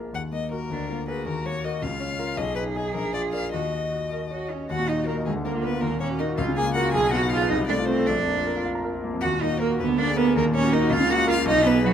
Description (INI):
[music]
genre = quick classical-period movement for piano trio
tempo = 106 BPM (dotted quarters)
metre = 6/8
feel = straight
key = Eb minor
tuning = A4 = 440 Hz
[part]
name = clear concert grand piano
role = accompaniment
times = 0.0-11.9 s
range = Bb1 to Bb5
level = -25 LUFS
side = left 2 dB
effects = none
[part]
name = rich violin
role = melody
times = 0.1-11.9 s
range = Gb4 to Ab5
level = -29 LUFS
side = left 5 dB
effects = none
[part]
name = clear cello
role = second line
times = 0.7-11.9 s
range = Gb3 to Bb4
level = -25 LUFS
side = right 5 dB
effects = none
[sound]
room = moderate scoring stage reverb, RT60 1.8 s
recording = close, detailed microphones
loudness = -22 LUFS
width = side -9 dB against mid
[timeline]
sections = 0.0-4.7 A section; 4.7-11.9 B section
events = none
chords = 0.1 Ebm; 0.7 Bb7/D; 1.3 Ebm; 1.8 Bbm/Db; 2.4 Abm/Cb; 2.9 Bb; 3.5 Ebm; 5.3 Bb/D; 5.8 Ebm; 6.4 Bbm/Db; 6.9 Abm/Cb; 7.5 F/C; 8.1 Bb; 9.2 Ebm; 9.8 Bb7/D; 10.4 Ebm; 10.9 Bbm/Db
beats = | 0.14 0.71 | 1.27 1.82 | 2.38 2.95 | 3.53 4.11 | 4.70 5.26 | 5.83 6.38 | 6.94 7.50 | 8.07 8.65 | 9.22 9.79 | 10.36 10.91 | 11.47